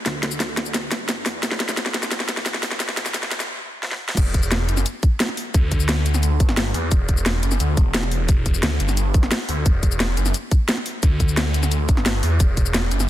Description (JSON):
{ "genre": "dark technical drum and bass", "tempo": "175 BPM", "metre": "4/4", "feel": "straight", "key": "E minor", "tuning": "A4 = 440 Hz", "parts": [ { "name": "phased detuned saw bass", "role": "bass", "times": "0.1-13.1 s", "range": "E1 to E2", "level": "-22 LUFS", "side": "equal", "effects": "phaser, overdrive, sidechain pumping" }, { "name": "drum and bass drum kit", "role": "drums", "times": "0.1-13.1 s", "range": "crash cymbal, hi-hat, shaker, snare drum", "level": "-23 LUFS", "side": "equal", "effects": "overdrive" }, { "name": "electronic kick drum", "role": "drums", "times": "4.2-12.6 s", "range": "none", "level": "-17 LUFS", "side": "equal", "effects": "none" } ], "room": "light reverb, digital ambience", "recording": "dense, heavily limited modern master, high-pass filter", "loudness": "-18 LUFS", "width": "side -14 dB against mid", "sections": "0.0-4.2 A section; 4.2-13.1 B section", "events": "build-up 0.0-4.2; drum fill 0.0-3.5, 3.8-4.2; stop 3.5-4.2; drop 4.2-13.1", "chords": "none", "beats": "| 0.06 0.40 0.74 1.09 | 1.43 1.77 2.12 2.46 | 2.80 3.14 3.49 3.83 | 4.17 4.51 4.86 5.20 | 5.54 5.89 6.23 6.57 | 6.92 7.26 7.60 7.94 | 8.29 8.63 8.97 9.31 | 9.66 10.00 10.34 10.69 | 11.03 11.37 11.71 12.06 | 12.40 12.74" }